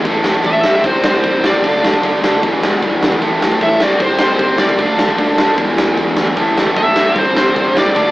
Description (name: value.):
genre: punk rock.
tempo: 152 BPM.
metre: 4/4.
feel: straight.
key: unclear.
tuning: A4 = 442 Hz.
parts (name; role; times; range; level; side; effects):
crunchy overdriven guitar; riff; 0.0-8.1 s; E2 to D4; -20 LUFS; right 2 dB; none.
distorted electric guitar; riff; 0.0-8.1 s; A2 to F4; -22 LUFS; equal; distortion.
overdriven electric guitar; riff; 0.0-8.1 s; E2 to D4; -20 LUFS; left 2 dB; none.
fuzz picked electric bass; bass; 0.0-8.1 s; E1 to D2; -25 LUFS; equal; none.
big rock drum kit; drums; 0.1-8.1 s; hi-hat, kick drum, snare drum; -16 LUFS; equal; none.
smooth overdriven lead guitar; melody; 0.5-8.1 s; C5 to E5; -15 LUFS; equal; none.
room: light reverb.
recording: rough rehearsal-room recording, warm saturation, AM radio sound.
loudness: -11 LUFS.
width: side -17 dB against mid.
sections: 0.1-8.1 A section.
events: none.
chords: 0.1 Am; 0.6 C; 1.6 Dm; 2.4 Em; 3.2 Am; 3.8 C; 4.8 Dm; 5.6 Em; 6.4 Am; 7.0 C.